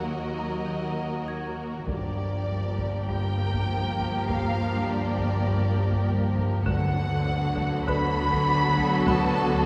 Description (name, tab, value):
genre	cinematic, suspense film score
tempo	100 BPM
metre	4/4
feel	straight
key	unclear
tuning	A4 = 440 Hz
part	muted symphonic violin section	melody	0.0-9.7 s	D5 to B5	-33 LUFS	equal	none
part	muted symphonic violin section	second line	0.0-9.7 s	Gb4 to Bb4	-36 LUFS	equal	none
part	muted symphonic viola section	accompaniment	0.0-9.7 s	F3 to B3	-34 LUFS	equal	none
part	muted symphonic cello section	bass	0.0-9.7 s	Eb2 to D3	-36 LUFS	equal	none
part	muted symphonic double bass section	bass	0.0-9.7 s	G1 to Eb2	-36 LUFS	equal	none
part	music box	texture	0.0-3.1, 7.9-9.7 s	B4 to Ab6	-40 LUFS	equal	none
part	marimba with hard mallets	riff	0.1-9.6 s	G2 to Eb4	-31 LUFS	equal	none
part	taiko ensemble	drums	1.9-9.6 s	none	-37 LUFS	equal	none
room	wet concert hall reverb, RT60 2.1 s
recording	recorded in a church or concert hall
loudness	-26 LUFS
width	mono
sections	0.0-9.7 A section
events	none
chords	0.0 Ebm; 1.9 Gm7; 6.7 D6